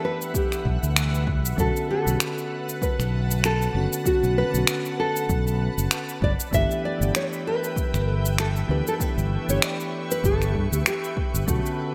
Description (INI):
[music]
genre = sunset chillout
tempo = 97 BPM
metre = 4/4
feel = swing 56% on 16ths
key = unclear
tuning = A4 = 440 Hz
[part]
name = nylon-string guitar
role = melody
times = 0.0-11.3 s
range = F#4 to E5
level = -30 LUFS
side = equal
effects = delay
[part]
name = soft electric-piano-like synth keys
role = accompaniment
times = 0.0-11.9 s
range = D3 to G4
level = -33 LUFS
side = equal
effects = chorus, low-pass filter
[part]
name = shimmering ambient pad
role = sustained chords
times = 0.0-11.9 s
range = B4 to C#6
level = -37 LUFS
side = equal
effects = chorus, built-in reverb
[part]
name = electronic cabasa and finger snaps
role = drums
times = 0.2-11.8 s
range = none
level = -29 LUFS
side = equal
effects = gated reverb
[part]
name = electronic kick drum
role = drums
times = 0.3-11.6 s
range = none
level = -30 LUFS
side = equal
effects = none
[part]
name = fretless electric bass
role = bass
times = 0.7-11.6 s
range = F#1 to G2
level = -26 LUFS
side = equal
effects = tube saturation
[part]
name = concert harp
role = arpeggios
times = 11.5-11.9 s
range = A3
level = -35 LUFS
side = equal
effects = none
[sound]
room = moderate lush hall reverb, RT60 1.7 s, digital ambience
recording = bright 1980s-style digital production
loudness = -24 LUFS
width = mono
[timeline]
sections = 0.0-11.9 A section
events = none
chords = 0.0 G6; 1.6 Bm7; 6.2 G6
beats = 0.34 0.96 | 1.58 2.20 2.82 3.44 | 4.05 4.67 5.29 5.91 | 6.53 7.15 7.77 8.38 | 9.00 9.62 10.24 10.86 | 11.48